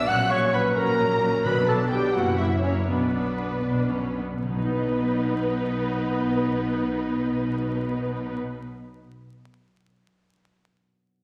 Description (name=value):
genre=classical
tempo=75-89 BPM (dotted quarters)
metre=6/8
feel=straight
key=unclear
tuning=A4 = 440 Hz
part: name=warm symphonic violin section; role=melody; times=0.0-8.4 s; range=B4 to F#6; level=-36 LUFS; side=equal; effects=none
part: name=mellow clarinet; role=second line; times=0.0-8.4 s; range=B3 to F#5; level=-29 LUFS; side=equal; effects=none
part: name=rich chamber violin section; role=second line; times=0.0-8.4 s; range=B4 to F#6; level=-36 LUFS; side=equal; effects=none
part: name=rich symphonic viola section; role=accompaniment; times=0.0-8.4 s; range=F#3 to E4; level=-33 LUFS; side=equal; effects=none
part: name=concert harp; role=arpeggios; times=0.0-9.2 s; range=F#2 to D#5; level=-35 LUFS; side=equal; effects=none
part: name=rich symphonic cello section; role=bass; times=0.1-8.4 s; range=F#2 to B2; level=-33 LUFS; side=equal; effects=none
part: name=warm symphonic double bass section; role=bass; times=0.1-8.4 s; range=F#1 to B1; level=-35 LUFS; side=equal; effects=none
part: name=timpani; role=percussion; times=1.4-2.1, 4.4-9.0 s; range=B2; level=-40 LUFS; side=equal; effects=none
room=wet scoring stage reverb, RT60 1.6 s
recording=vinyl crackle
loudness=-25 LUFS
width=mono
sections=0.0-4.4 A section; 4.4-7.6 B section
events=slowing down 0.8-4.4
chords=0.1 F#/A#; 1.4 Bm; 2.1 F#7; 2.9 Bm; 4.4 B